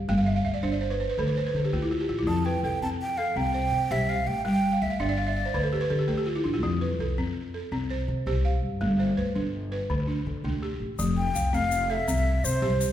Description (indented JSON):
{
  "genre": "west african traditional, West African string and xylophone music",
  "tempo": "110 BPM (dotted quarters)",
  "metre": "12/8",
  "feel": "straight",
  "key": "F lydian",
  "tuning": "A4 = 442 Hz",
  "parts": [
    { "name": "balafon", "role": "arpeggios", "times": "0.0-12.9 s", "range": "D3 to G5", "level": "-27 LUFS", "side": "equal", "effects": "none" },
    { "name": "upright bass", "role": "bass", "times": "0.0-12.9 s", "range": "F1 to D3", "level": "-29 LUFS", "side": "equal", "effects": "none" },
    { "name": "breathy mellow silver concert flute", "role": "melody", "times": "2.3-6.1, 11.2-12.8 s", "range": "C5 to A5", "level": "-28 LUFS", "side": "right 1 dB", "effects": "none" },
    { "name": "tube shaker", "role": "percussion", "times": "11.0-12.9 s", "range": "none", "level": "-36 LUFS", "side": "left 6 dB", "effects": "none" }
  ],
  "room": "wet recital hall reverb, RT60 1.6 s",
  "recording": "heard from further back in the room",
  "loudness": "-24 LUFS",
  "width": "side -11 dB against mid",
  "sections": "0.0-11.0 A section; 11.0-12.9 B section",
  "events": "balafon fill 0.1-2.3, 4.7-6.6; flute solo 11.0-12.9",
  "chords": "0.1 G5; 1.2 D5; 2.3 F; 3.4 C5; 4.5 G5; 5.5 D5; 6.6 F; 7.7 C5; 8.8 G; 9.9 D5; 11.0 F; 12.1 C",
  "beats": "| 0.09 0.63 1.18 1.73 | 2.27 2.82 3.36 3.91 | 4.45 5.00 5.54 6.09 | 6.63 7.18 7.72 8.27 | 8.81 9.36 9.90 10.45 | 10.99 11.54 12.08 12.62"
}